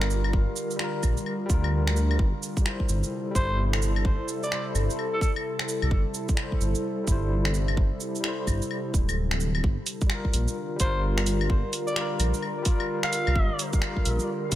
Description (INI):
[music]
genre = future garage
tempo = 129 BPM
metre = 4/4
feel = swing 62% on 16ths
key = G dorian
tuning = A4 = 442 Hz
[part]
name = overdriven tine electric piano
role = accompaniment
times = 0.0-14.6 s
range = G3 to C5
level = -34 LUFS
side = left 3 dB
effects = fast tremolo, sidechain pumping, dub echo
[part]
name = warbly tape-like pad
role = sustained chords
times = 0.0-14.6 s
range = C3 to Bb4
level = -32 LUFS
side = equal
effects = chorus, built-in reverb, sidechain pumping
[part]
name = swelling detuned saw bass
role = bass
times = 0.0-14.6 s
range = D1 to D2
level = -26 LUFS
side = equal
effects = sidechain pumping
[part]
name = garage drum kit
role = drums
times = 0.0-14.6 s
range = claves, finger snaps, hi-hat, shaker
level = -32 LUFS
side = equal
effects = none
[part]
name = electronic kick drum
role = drums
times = 0.3-14.6 s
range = none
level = -25 LUFS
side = equal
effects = none
[part]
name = growling alto saxophone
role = melody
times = 3.4-5.3, 10.8-13.7 s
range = A4 to F5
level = -33 LUFS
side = equal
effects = dub echo
[sound]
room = light reverb, digital ambience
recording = none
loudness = -24 LUFS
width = side -13 dB against mid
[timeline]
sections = 0.0-14.6 A section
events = none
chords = 0.0 Gm7; 2.2 Am7/G; 9.6 Gm7